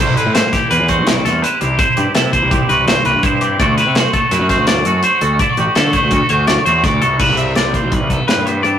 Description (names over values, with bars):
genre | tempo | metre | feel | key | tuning
math rock and midwest emo | 167 BPM | 5/4 | straight | unclear | A4 = 438 Hz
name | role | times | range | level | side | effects
twangy electric guitar | accompaniment | 0.0-8.8 s | G2 to F#4 | -19 LUFS | right 2 dB | harmonic tremolo
twangy electric guitar | arpeggios | 0.0-8.8 s | G4 to E5 | -16 LUFS | left 1 dB | none
fuzz picked electric bass | bass | 0.0-8.8 s | A1 to D3 | -18 LUFS | equal | overdrive
modern studio drum kit | drums | 0.2-8.7 s | crash cymbal, hi-hat, kick drum, snare drum | -17 LUFS | equal | none
room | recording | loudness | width
moderate studio reverb, RT60 0.7 s | rough rehearsal-room recording, warm saturation | -12 LUFS | side -9 dB against mid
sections
0.0-7.2 A section; 7.2-8.8 B section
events
none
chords
0.0 Cmaj7; 3.6 D7; 7.2 Cmaj7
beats
0.35 0.71 1.07 1.44 | 1.80 2.16 2.52 2.88 3.24 | 3.60 3.96 4.32 4.68 5.04 | 5.40 5.76 6.12 6.48 6.84 | 7.20 7.56 7.92 8.28 8.64